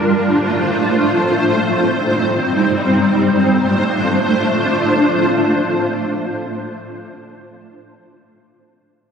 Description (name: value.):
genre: hip hop.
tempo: free time.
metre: none.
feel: none.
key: D phrygian.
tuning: A4 = 440 Hz.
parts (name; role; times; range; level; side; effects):
granular cloud pad; sustained chords; 0.0-6.6 s; G3 to C5; -14 LUFS; equal; built-in reverb, ensemble chorus.
room: wet lush hall reverb, RT60 2.1 s.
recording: dreamy mix soaked in reverb.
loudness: -13 LUFS.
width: side -6 dB against mid.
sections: 0.0-2.9 A section; 2.9-6.3 B section.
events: none.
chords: 0.0 Dm7; 1.3 Cm; 2.9 Dm7.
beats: free time.